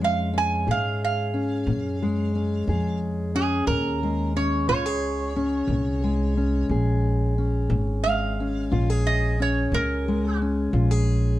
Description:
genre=acoustic country blues, solo or duo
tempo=60 BPM (dotted quarters)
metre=12/8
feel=straight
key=Bb minor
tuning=A4 = 440 Hz
part: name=metal-body resonator slide guitar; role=melody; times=0.0-10.4 s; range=Ab4 to Ab5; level=-27 LUFS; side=right 4 dB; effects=plate reverb
part: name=fingerpicked steel-string acoustic guitar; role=accompaniment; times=0.0-11.4 s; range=Bb2 to Ab4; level=-26 LUFS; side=left 2 dB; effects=none
part: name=upright bass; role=bass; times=0.0-11.4 s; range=Ab1 to Ab2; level=-25 LUFS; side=equal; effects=none
room=light reverb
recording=dark, warm production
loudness=-21 LUFS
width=side -15 dB against mid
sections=0.0-11.4 A section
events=none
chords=0.0 Bbm7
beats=0.67 1.67 | 2.67 3.68 4.68 5.69 | 6.70 7.70 8.71 9.72 | 10.73

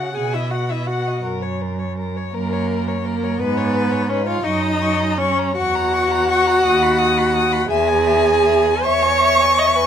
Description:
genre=classical, slow romantic movement for string quartet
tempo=56 BPM (dotted quarters)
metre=6/8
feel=uneven beats, rubato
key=unclear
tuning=A4 = 439 Hz
part: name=warm violin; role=melody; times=0.0-9.9 s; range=A#4 to D#6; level=-24 LUFS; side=left 10 dB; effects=none
part: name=rich violin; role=second line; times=0.0-9.9 s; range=A#4 to C#6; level=-22 LUFS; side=left 3 dB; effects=none
part: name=warm viola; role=accompaniment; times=0.0-9.9 s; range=A#3 to D#5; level=-19 LUFS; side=right 2 dB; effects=none
part: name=rich cello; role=bass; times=0.0-9.8 s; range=D#2 to B2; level=-23 LUFS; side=right 3 dB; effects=none
room=moderate studio reverb, RT60 0.8 s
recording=minimal, uncompressed stereo recording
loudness=-16 LUFS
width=side -8 dB against mid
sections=0.0-9.9 A section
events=none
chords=0.1 B; 1.2 F#; 3.4 C#5/G#; 4.4 F#; 5.6 F#7/E; 6.6 B/D#; 7.7 C#m/E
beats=0.15 | 1.24 2.33 | 3.40 4.44 | 5.57 6.64 | 7.70 8.85

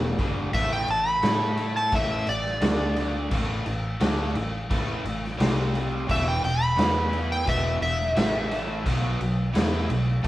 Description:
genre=blues rock power trio and southern rock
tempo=86 BPM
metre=4/4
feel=straight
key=unclear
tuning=A4 = 437 Hz
part: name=crunchy overdriven guitar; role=riff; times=0.0-10.3 s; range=E2 to A4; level=-30 LUFS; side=equal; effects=none
part: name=fingered electric bass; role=bass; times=0.0-10.3 s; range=E1 to A2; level=-29 LUFS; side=equal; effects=none
part: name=raw garage drum kit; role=drums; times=0.2-10.3 s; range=crash cymbal, kick drum, snare drum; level=-27 LUFS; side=equal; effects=none
part: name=overdriven slide guitar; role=melody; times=0.5-8.8 s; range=D5 to B5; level=-26 LUFS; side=equal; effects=none
room=moderate stone room reverb, RT60 1.3 s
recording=band playing live in one room, vinyl crackle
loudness=-22 LUFS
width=side -15 dB against mid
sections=0.0-10.3 A section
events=electric slide guitar solo 0.0-10.3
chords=0.0 E5; 0.5 A5; 2.6 D5; 3.3 A5; 5.4 C5; 6.1 E5; 8.2 A5; 8.9 B5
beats=| 0.54 1.23 1.93 2.62 | 3.32 4.01 4.71 5.40 | 6.09 6.79 7.48 8.17 | 8.86 9.55 10.25

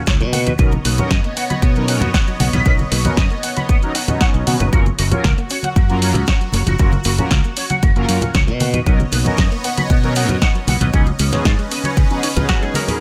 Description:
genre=nu-disco, nu disco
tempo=116 BPM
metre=4/4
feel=straight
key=unclear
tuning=A4 = 440 Hz
part: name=lush unison pad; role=sustained chords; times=0.0-13.0 s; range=B3 to D#5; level=-29 LUFS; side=equal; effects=chorus, phaser, sidechain pumping
part: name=soft round pluck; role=arpeggios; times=0.1-12.9 s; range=D#3 to D#4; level=-31 LUFS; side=equal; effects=none
part: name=electric guitar with an envelope filter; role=riff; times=0.1-12.9 s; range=C#3 to B5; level=-27 LUFS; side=equal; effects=ensemble chorus, digital delay
part: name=modern bright fingered electric bass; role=bass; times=0.1-12.4 s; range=F#1 to B2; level=-21 LUFS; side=equal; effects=tube saturation
part: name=electronic kick drum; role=drums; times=0.1-12.6 s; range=none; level=-18 LUFS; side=equal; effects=studio reverb
part: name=house drum kit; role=drums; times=0.1-13.0 s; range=hi-hat, snare drum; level=-24 LUFS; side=equal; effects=studio reverb
part: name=maracas and congas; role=percussion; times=0.1-13.0 s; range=none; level=-26 LUFS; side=equal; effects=none
part: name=mellow synth brass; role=accompaniment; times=0.6-13.0 s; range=F#3 to A#4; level=-28 LUFS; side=equal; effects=chorus, phaser, digital delay
part: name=direct-recorded clean electric guitar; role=melody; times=12.5-13.0 s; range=F#4 to A#4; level=-26 LUFS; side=equal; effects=warbly pitch drift
room=digital ambience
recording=none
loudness=-16 LUFS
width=mono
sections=0.0-13.0 A section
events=drop 0.0-13.0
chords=0.3 Bmaj9; 4.7 F#maj7; 8.6 Bmaj9; 10.9 C#9sus4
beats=0.07 | 0.59 1.11 1.62 2.14 | 2.66 3.18 3.69 4.21 | 4.73 5.25 5.76 6.28 | 6.80 7.31 7.83 8.35 | 8.87 9.38 9.90 10.42 | 10.94 11.45 11.97 12.49

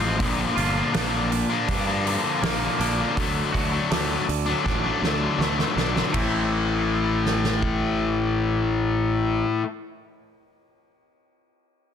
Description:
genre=quiet-loud alternative rock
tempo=81 BPM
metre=4/4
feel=straight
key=unclear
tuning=A4 = 440 Hz
part: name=twangy electric guitar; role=arpeggios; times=0.0-9.7 s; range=A2 to F#4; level=-30 LUFS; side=right 5 dB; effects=none
part: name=distorted electric guitar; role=riff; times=0.0-9.7 s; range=A2 to F4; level=-24 LUFS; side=left 5 dB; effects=distortion
part: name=fuzz fingered electric bass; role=bass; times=0.0-9.4 s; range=G1 to G2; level=-28 LUFS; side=right 1 dB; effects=overdrive
part: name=loose indie drum kit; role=drums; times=0.2-7.8 s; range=hi-hat, kick drum, ride cymbal, snare drum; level=-29 LUFS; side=right 1 dB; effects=none
room=light reverb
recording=dense, heavily limited modern master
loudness=-21 LUFS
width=side -8 dB against mid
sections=0.0-6.1 A section; 6.1-9.1 B section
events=drum fill 4.7-6.1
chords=0.2 Bb; 3.2 D; 6.1 Am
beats=| 0.20 0.94 1.68 2.42 | 3.17 3.91 4.65 5.39 | 6.14 6.88 7.63 8.37

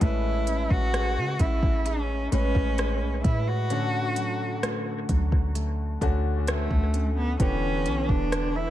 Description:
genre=contemporary R&B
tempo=65 BPM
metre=4/4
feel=straight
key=A major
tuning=A4 = 439 Hz
part: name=warm cello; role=melody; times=0.0-8.7 s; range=A3 to F#4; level=-30 LUFS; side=equal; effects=dub echo
part: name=warm concert grand piano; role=accompaniment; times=0.0-8.7 s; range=A2 to B4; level=-33 LUFS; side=left 4 dB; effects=dub echo
part: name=nylon-string guitar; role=arpeggios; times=0.0-8.7 s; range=D3 to B4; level=-34 LUFS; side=right 1 dB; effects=dub echo
part: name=clean 808-style bass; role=bass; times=0.0-8.7 s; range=E1 to C#3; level=-27 LUFS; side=equal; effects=none
part: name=smooth R&B drum kit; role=drums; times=0.0-8.5 s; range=hi-hat, kick drum, rim click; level=-27 LUFS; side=equal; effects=none
room=small room reverb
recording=echo-heavy mix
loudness=-23 LUFS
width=side -13 dB against mid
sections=0.0-8.7 A section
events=none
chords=0.0 Amaj9; 3.7 Dmaj7; 7.4 Em7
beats=| 0.01 0.94 1.86 2.78 | 3.71 4.63 5.55 6.47 | 7.40 8.32

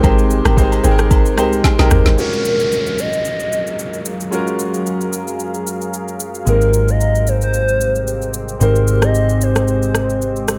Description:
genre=amapiano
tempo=112 BPM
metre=4/4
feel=swing 55% on 16ths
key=unclear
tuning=A4 = 440 Hz
part: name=warm concert grand piano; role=accompaniment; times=0.0-10.6 s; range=G#3 to B#4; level=-25 LUFS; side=equal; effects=none
part: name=deep dark ambient pad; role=sustained chords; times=0.0-10.6 s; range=F#3 to E#5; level=-26 LUFS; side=equal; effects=chorus, built-in reverb, sidechain pumping
part: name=marimba with medium hard mallets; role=stabs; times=0.0-1.9 s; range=A#4 to G5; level=-25 LUFS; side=equal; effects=tape echo
part: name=deep log drum bass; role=bass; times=0.0-2.2 s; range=G1 to B#1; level=-17 LUFS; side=equal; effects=none
part: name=afro-pop drum kit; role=drums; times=0.0-10.6 s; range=kick drum, rim click, shaker, snare drum, toms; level=-21 LUFS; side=equal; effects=none
part: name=agogo bells and woodblock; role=percussion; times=0.0-1.9 s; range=none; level=-29 LUFS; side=equal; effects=none
part: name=hollow clarinet-like synth lead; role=melody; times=2.2-10.5 s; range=A#4 to D#5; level=-21 LUFS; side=equal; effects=chorus, tape echo
part: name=downlifter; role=sound effects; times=2.2-6.5 s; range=none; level=-30 LUFS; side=equal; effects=none
part: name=hollow-body short-scale fingered electric bass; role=bass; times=6.5-10.6 s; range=G#1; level=-19 LUFS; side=equal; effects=none
room=digital ambience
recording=none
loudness=-16 LUFS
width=mono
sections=0.0-2.2 A section; 2.2-10.6 B section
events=drop 0.0-2.2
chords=0.0 G#maj9; 2.2 F#maj9; 6.5 G#maj9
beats=| 0.04 0.57 1.11 1.64 | 2.18 2.71 3.25 3.79 | 4.32 4.86 5.39 5.93 | 6.46 7.00 7.54 8.07 | 8.61 9.14 9.68 10.21

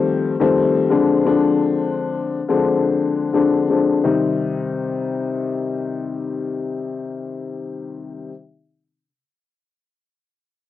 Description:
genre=hip hop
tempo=86 BPM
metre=4/4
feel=swing 55% on 16ths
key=C minor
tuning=A4 = 440 Hz
part: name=dark upright piano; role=accompaniment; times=0.0-8.3 s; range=C3 to Eb4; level=-18 LUFS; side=left 4 dB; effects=cassette tape, high-pass filter, low-pass filter
room=light reverb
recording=home recording on cassette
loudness=-17 LUFS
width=side -12 dB against mid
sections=0.0-4.0 A section; 4.0-6.8 B section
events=none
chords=0.0 F9; 0.9 Dm7b5; 4.0 Cm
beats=0.56 | 1.25 1.95 2.65 3.35 | 4.04 4.74 5.44 6.14

